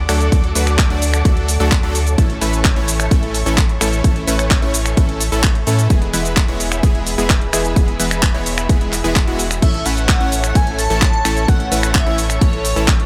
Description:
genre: EDM, festival progressive house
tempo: 129 BPM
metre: 4/4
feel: straight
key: A major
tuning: A4 = 440 Hz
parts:
  - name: muted studio string section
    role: sustained chords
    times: 0.0-13.1 s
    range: G#4 to D6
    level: -30 LUFS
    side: equal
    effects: sidechain pumping
  - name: saturated sub bass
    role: bass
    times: 0.0-13.1 s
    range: E1 to A2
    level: -23 LUFS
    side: equal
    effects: tube saturation, sidechain pumping
  - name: supersaw stab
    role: riff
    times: 0.1-12.9 s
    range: E3 to D5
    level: -24 LUFS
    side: equal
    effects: sidechain pumping, delay
  - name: house drum kit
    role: drums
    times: 0.1-13.1 s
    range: crash cymbal, finger snaps, handclaps, hi-hat, shaker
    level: -23 LUFS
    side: equal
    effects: none
  - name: electronic kick drum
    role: drums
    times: 0.3-13.0 s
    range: none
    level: -17 LUFS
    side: equal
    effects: none
  - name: airy dreamy lead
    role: melody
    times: 9.6-13.1 s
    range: C#5 to A5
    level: -25 LUFS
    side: equal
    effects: chorus, delay
room: little or no reverb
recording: none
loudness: -16 LUFS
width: mono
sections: 0.0-13.1 A section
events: none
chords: 0.0 D; 2.2 A; 5.9 E; 9.6 A

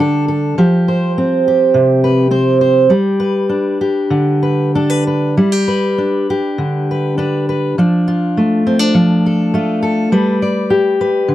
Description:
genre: folk, solo fingerstyle acoustic guitar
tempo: 102 BPM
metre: 4/4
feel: rubato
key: unclear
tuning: A4 = 440 Hz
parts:
  - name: fingerpicked steel-string acoustic guitar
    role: solo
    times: 0.0-11.3 s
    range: C3 to D5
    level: -12 LUFS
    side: equal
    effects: none
room: little or no reverb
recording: dry, close 1970s-style studio recording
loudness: -12 LUFS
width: side -13 dB against mid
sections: 0.0-11.3 A section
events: none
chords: 0.0 Gsus2; 0.6 Fsus2; 2.9 G; 7.8 Dm/F; 10.1 Gadd9

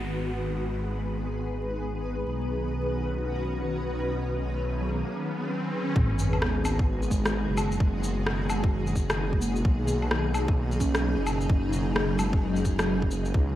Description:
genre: future garage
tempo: 130 BPM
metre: 4/4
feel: swing 61% on 16ths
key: unclear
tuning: A4 = 440 Hz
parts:
  - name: muted felt-like synth keys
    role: accompaniment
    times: 0.0-13.4 s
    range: F#3 to C#4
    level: -34 LUFS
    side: right 2 dB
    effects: chorus, vintage 12-bit sampler grit, sidechain pumping, analog delay
  - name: granular cloud pad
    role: sustained chords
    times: 0.0-13.6 s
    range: B2 to B4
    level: -31 LUFS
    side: left 1 dB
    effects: built-in reverb, ensemble chorus, sidechain pumping
  - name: swelling detuned saw bass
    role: bass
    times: 0.0-13.6 s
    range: F#1 to C#2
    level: -30 LUFS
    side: equal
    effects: sidechain pumping
  - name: downlifter, riser and sub drop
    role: sound effects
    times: 0.0-7.8 s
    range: none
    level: -35 LUFS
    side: equal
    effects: none
  - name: electronic kick drum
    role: drums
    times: 6.0-13.5 s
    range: none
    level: -25 LUFS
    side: equal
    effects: none
  - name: electronic shaker, woodblock and rim click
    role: drums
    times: 6.2-13.3 s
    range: none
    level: -32 LUFS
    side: left 1 dB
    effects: none
room: light reverb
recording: vinyl crackle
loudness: -25 LUFS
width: side -13 dB against mid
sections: 0.0-6.0 A section; 6.0-13.6 B section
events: riser 4.4-6.0; impact 6.0-7.8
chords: 0.0 G#m7; 2.3 Badd9; 6.0 G#m7; 9.6 Badd9

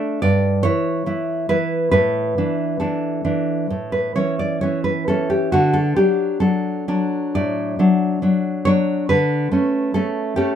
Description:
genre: romantic piece for solo classical guitar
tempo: 59-74 BPM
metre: 4/4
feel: rubato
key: D major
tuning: A4 = 440 Hz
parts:
  - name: nylon-string guitar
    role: solo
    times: 0.0-10.6 s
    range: G2 to D5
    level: -17 LUFS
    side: equal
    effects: none
room: light reverb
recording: none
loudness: -17 LUFS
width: side -9 dB against mid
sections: 0.0-10.6 A section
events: none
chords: 0.2 Em/G; 1.9 Asus4; 3.7 A; 5.5 D; 9.1 A7/D

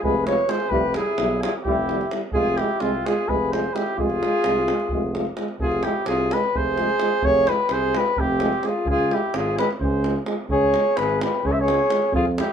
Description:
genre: balkan folk, Balkan brass band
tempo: 258 BPM (eighths)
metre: 7/8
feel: straight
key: F hungarian minor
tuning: A4 = 440 Hz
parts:
  - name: mellow cornet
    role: melody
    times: 0.0-12.5 s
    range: F4 to E5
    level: -23 LUFS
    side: right 1 dB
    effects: none
  - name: breathy flugelhorn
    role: second line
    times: 0.0-12.5 s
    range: C4 to C5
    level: -26 LUFS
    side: left 4 dB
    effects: none
  - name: warm euphonium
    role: accompaniment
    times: 0.0-12.5 s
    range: E4 to F4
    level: -32 LUFS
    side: left 8 dB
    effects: none
  - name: warm trombone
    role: accompaniment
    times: 0.0-12.5 s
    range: G3 to Ab3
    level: -29 LUFS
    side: right 5 dB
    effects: none
  - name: mellow tuba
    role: bass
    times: 0.0-12.4 s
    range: F1 to F2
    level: -26 LUFS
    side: right 1 dB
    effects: none
  - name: davul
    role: percussion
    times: 0.0-12.5 s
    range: none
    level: -30 LUFS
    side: right 1 dB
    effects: none
room: moderate small room ambience, RT60 0.5 s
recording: band playing live in one room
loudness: -19 LUFS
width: side -8 dB against mid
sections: 0.0-5.6 A section; 5.6-12.5 B section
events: none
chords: 0.0 Fm; 0.7 Em/F; 2.3 Fm; 8.9 Db

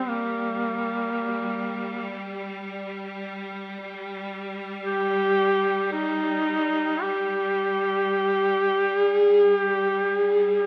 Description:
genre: caucasian folk, Caucasian lament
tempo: free time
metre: none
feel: none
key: G minor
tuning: A4 = 440 Hz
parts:
  - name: warm duduk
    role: melody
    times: 0.0-10.7 s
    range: Bb3 to G4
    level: -24 LUFS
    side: equal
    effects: none
  - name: bright studio string section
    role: drone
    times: 0.0-10.7 s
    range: G3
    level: -35 LUFS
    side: equal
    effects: none
room: moderate recital hall reverb, RT60 1.5 s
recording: none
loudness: -25 LUFS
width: mono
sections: 0.0-10.7 A section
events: none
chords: none

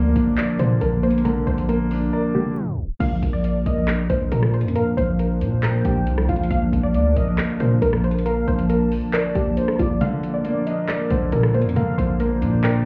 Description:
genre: hip hop, trap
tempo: 137 BPM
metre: 4/4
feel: half-time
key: Bb major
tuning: A4 = 440 Hz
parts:
  - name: warbly dusty pluck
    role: melody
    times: 0.0-12.8 s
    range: F4 to F5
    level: -29 LUFS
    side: equal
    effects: chorus, delay
  - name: warm grand piano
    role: accompaniment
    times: 0.0-3.0, 10.0-12.9 s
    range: D3 to D5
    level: -26 LUFS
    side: equal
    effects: none
  - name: dark analog pad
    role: sustained chords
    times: 0.0-12.9 s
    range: F3 to A5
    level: -27 LUFS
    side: equal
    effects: chorus
  - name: distorted 808-style bass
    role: bass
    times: 0.0-12.8 s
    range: Bb1 to Bb2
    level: -23 LUFS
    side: equal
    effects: distortion
  - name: trap drum kit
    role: drums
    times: 0.2-12.7 s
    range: crash cymbal, handclaps, hi-hat, rim click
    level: -32 LUFS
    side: equal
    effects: none
  - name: warm velvety synth lead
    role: second line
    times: 3.4-12.9 s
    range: C5 to G5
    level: -32 LUFS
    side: equal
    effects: chorus, delay
room: light reverb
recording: heard muffled through a wall, club reverb, EQ, tape stop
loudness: -21 LUFS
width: mono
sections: 0.0-3.0 A section; 3.0-12.9 B section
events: silent gap 2.1-3.0; tape stop 2.6-3.0; break 10.0-10.9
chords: 0.0 Bb

